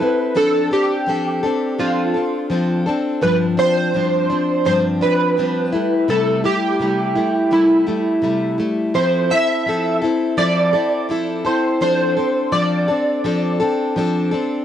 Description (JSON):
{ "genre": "indie pop", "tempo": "84 BPM", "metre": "4/4", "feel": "swing 55% on 16ths", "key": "unclear", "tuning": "A4 = 440 Hz", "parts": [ { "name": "chorused retro synth keys", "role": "melody", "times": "0.0-13.6 s", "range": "E4 to E5", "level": "-19 LUFS", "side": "right 1 dB", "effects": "ensemble chorus, tape echo" }, { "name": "picked plugged-in steel-string acoustic guitar", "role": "accompaniment", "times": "0.0-14.6 s", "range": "G2 to A4", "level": "-18 LUFS", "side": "left 1 dB", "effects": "wide subtle chorus, warbly pitch drift" } ], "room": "moderate studio reverb, RT60 0.6 s", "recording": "dry, gritty hardware recording, cassette tape", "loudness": "-16 LUFS", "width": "side -10 dB against mid", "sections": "0.0-14.6 A section", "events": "none", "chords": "0.4 Dm7/F; 3.2 G7sus4; 5.7 C6; 8.9 Fmaj7; 11.8 Dm7/F" }